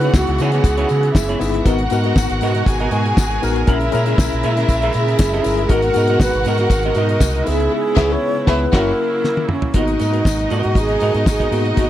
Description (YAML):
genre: disco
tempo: 119 BPM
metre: 4/4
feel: straight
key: G# minor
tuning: A4 = 444 Hz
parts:
  - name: alto flute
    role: melody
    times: 0.0-1.4, 5.0-11.9 s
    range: C#4 to C#5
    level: -20 LUFS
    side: right 2 dB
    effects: none
  - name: warm studio violin section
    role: second line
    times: 0.0-11.9 s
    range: D#4 to G#5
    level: -23 LUFS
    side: left 1 dB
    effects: none
  - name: semi-hollow electric guitar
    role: accompaniment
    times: 0.0-11.9 s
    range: B3 to F#5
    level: -24 LUFS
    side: right 5 dB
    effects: none
  - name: tine electric piano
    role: accompaniment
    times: 0.0-11.9 s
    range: A#3 to A#4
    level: -24 LUFS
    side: left 8 dB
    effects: overdrive, fast stereo tremolo
  - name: clear studio string section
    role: sustained chords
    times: 0.0-11.9 s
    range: B2 to A#4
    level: -26 LUFS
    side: right 2 dB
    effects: none
  - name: fingered electric bass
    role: bass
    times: 0.0-11.9 s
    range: F#1 to C#3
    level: -20 LUFS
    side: equal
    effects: none
  - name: damped 70s drum kit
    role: drums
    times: 0.0-11.9 s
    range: crash cymbal, hi-hat, kick drum, snare drum, toms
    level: -16 LUFS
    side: equal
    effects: none
  - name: tambourine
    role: percussion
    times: 0.1-11.9 s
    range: none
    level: -34 LUFS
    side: left 17 dB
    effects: none
room: little or no reverb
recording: dry, close 1970s-style studio recording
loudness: -14 LUFS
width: side -12 dB against mid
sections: 0.0-9.7 A section; 9.7-11.9 B section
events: band accent 7.7-9.7; drum fill 9.2-9.7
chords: 0.0 C#m7; 1.7 G#m9; 3.7 A#m7b5; 5.7 G#m9; 7.5 C#m7; 8.7 F#7; 9.7 G#m9